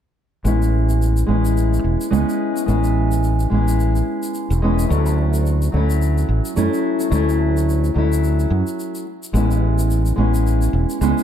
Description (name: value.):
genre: sunset chillout.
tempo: 108 BPM.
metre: 4/4.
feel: swing 56% on 16ths.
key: A major.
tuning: A4 = 440 Hz.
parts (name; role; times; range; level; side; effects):
nylon-string guitar; accompaniment; 0.4-11.2 s; F#3 to E4; -20 LUFS; moving between left 5 dB and right 3 dB; auto-pan, low-pass filter, digital delay.
fretless electric bass; bass; 0.4-11.1 s; E1 to F#2; -17 LUFS; equal; ensemble chorus.
shaker; drums; 0.5-11.2 s; none; -36 LUFS; left 3 dB; none.
room: light reverb, small room ambience.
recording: dark, warm production.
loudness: -16 LUFS.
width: side -9 dB against mid.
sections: 0.5-11.2 A section.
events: none.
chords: 0.5 Amaj9; 4.9 Dmaj9; 9.3 Amaj9.